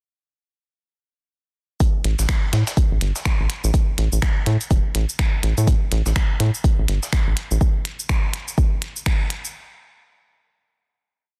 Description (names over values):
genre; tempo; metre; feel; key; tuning
minimal techno; 124 BPM; 4/4; swing 59% on 16ths; unclear; A4 = 440 Hz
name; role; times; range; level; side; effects
dusty soul sampler-style drum kit; drums; 1.8-7.5 s; hi-hat, snare drum; -37 LUFS; equal; high-pass filter on hats, high-pass filter on snare
electronic kick drum; drums; 1.8-9.2 s; none; -21 LUFS; equal; none
minimal click drum kit; drums; 1.8-9.5 s; finger snaps, hi-hat, shaker; -31 LUFS; equal; soft clipping on snare
rubbery square bass; bass; 2.0-7.6 s; E1 to A2; -21 LUFS; equal; sidechain pumping
room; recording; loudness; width
little or no reverb; dense, heavily limited modern master; -21 LUFS; mono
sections
1.8-9.5 groove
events
none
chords
none